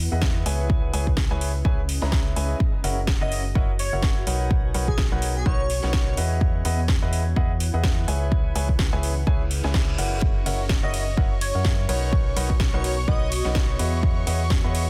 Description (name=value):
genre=piano house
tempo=126 BPM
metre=4/4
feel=swing 57% on 16ths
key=F# mixolydian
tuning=A4 = 441 Hz
part: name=organ-like FM bass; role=bass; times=0.0-14.9 s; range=F#1 to F#2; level=-28 LUFS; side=equal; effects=sidechain pumping
part: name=granular cloud pad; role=texture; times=0.0-14.9 s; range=B3 to G#5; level=-39 LUFS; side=equal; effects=built-in reverb, sidechain pumping
part: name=clear baby grand piano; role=riff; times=0.1-14.8 s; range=D#4 to A#5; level=-33 LUFS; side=equal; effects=sidechain pumping, digital delay
part: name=electronic kick drum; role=drums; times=0.2-14.6 s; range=none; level=-25 LUFS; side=equal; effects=none
part: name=house drum kit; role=drums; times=0.2-14.9 s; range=hi-hat, ride cymbal, snare drum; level=-33 LUFS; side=equal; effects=none
part: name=airy dreamy lead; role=melody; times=3.2-6.1, 10.8-13.6 s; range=G#4 to D#5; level=-34 LUFS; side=equal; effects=chorus, digital delay
part: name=reverse cymbal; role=sound effects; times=9.4-10.2 s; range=none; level=-38 LUFS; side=equal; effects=none
part: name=warm chamber violin section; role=sustained chords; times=10.2-14.9 s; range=C#5 to C#6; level=-38 LUFS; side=equal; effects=sidechain pumping
room=little or no reverb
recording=dense, heavily limited modern master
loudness=-23 LUFS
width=mono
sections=0.0-14.9 A section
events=reverse cymbal 9.5-10.2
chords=0.0 Emaj9; 0.7 C#m7; 2.6 F#7; 4.5 Bmaj9; 6.4 Emaj9; 8.3 F#7; 12.1 Bmaj9; 14.0 Emaj9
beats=0.22 | 0.70 1.17 1.65 2.13 | 2.60 3.08 3.56 4.03 | 4.51 4.98 5.46 5.94 | 6.41 6.89 7.36 7.84 | 8.32 8.79 9.27 9.74 | 10.22 10.70 11.17 11.65 | 12.13 12.60 13.08 13.55 | 14.03 14.51